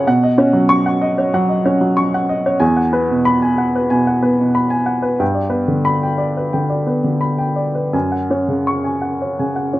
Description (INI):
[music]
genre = neoclassical minimalist piano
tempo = 81-96 BPM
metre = 4/4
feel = rubato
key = unclear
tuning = A4 = 440 Hz
[part]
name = warm upright piano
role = solo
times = 0.0-9.8 s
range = E2 to C#6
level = -14 LUFS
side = equal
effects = none
[sound]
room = light reverb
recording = recorded outdoors, with no room sound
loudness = -14 LUFS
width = side -16 dB against mid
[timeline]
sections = 0.0-9.8 A section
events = none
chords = 0.1 Badd9; 2.6 Eadd9; 5.2 G; 7.9 F#sus2